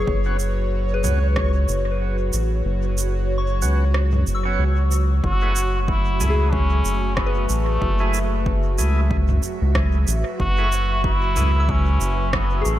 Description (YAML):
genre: ambient dub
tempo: 93 BPM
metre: 4/4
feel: swing 57% on 16ths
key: F# minor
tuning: A4 = 441 Hz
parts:
  - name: airy breathy pad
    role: sustained chords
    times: 0.0-12.8 s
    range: F#3 to E5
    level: -29 LUFS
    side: right 1 dB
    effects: chorus
  - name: soft synth bell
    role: arpeggios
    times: 0.0-12.8 s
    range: G#4 to E6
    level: -31 LUFS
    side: left 4 dB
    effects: chorus, phaser, dub echo
  - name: round analog bass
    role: bass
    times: 0.0-12.8 s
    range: F#1 to C#2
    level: -20 LUFS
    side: equal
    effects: none
  - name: backwards swelling texture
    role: texture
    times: 0.0-5.3 s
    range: C#5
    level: -34 LUFS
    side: right 1 dB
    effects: built-in reverb
  - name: electronic kick drum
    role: drums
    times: 0.1-12.5 s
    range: none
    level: -26 LUFS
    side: equal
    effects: overdrive
  - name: overdriven tonewheel organ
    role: stabs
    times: 0.3-11.5 s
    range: A3 to G#4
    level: -33 LUFS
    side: right 3 dB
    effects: slow rotary speaker, dub echo
  - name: organic electronic drum kit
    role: drums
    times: 0.4-12.8 s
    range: cabasa, rim click, toms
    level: -28 LUFS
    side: right 2 dB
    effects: overdrive, dub echo
  - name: trombone with metal mute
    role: melody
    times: 5.2-12.8 s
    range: A3 to F#4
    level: -26 LUFS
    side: equal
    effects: dub echo
room: digital ambience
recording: none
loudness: -18 LUFS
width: side -13 dB against mid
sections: 0.0-5.2 A section; 5.2-12.8 B section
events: kick drops out 2.7-5.2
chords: 0.0 F#7(no3); 5.2 F#m7